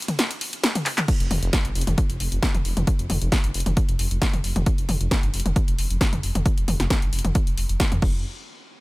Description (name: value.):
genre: driving peak-time techno.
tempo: 134 BPM.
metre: 4/4.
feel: straight.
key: unclear.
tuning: A4 = 440 Hz.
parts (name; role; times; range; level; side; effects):
punchy analog drum machine; drums; 0.0-8.1 s; crash cymbal, handclaps, hi-hat, ride cymbal, snare drum, toms; -25 LUFS; left 1 dB; overdrive, sidechain pumping on hats, sidechain pumping on cymbals, sidechain pumping on toms.
electronic kick drum; drums; 1.1-8.1 s; none; -22 LUFS; equal; overdrive.
detuned saw bass; bass; 1.2-8.2 s; F1 to F2; -25 LUFS; equal; sidechain pumping.
room: little or no reverb.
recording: none.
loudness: -20 LUFS.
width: side -22 dB against mid.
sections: 0.0-1.1 A section; 1.1-8.2 B section.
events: break 0.0-1.1; drop 0.0-1.1; drum fill 0.9.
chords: none.